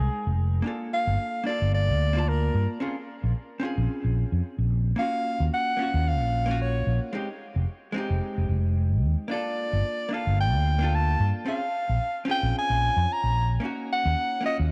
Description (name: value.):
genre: sunset chillout.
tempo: 111 BPM.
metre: 4/4.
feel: swing 57% on 16ths.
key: G phrygian.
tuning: A4 = 441 Hz.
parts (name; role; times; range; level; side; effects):
breathy soprano saxophone; melody; 0.0-14.6 s; Ab4 to Bb5; -30 LUFS; equal; delay.
vintage hollow-body jazz guitar; accompaniment; 0.0-14.7 s; Ab3 to A5; -35 LUFS; equal; tape echo.
mellow fretless electric bass; bass; 0.0-14.7 s; F1 to G2; -26 LUFS; equal; none.
room: light reverb, small room ambience.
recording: dark, warm production.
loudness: -26 LUFS.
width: mono.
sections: 0.7-14.7 A section.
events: none.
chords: 0.0 Fm9; 0.7 Gm9; 2.8 Bbm9; 5.0 Ebm9; 7.1 Fm9; 9.3 Gm9; 11.5 Bbm9; 13.6 Ebm9.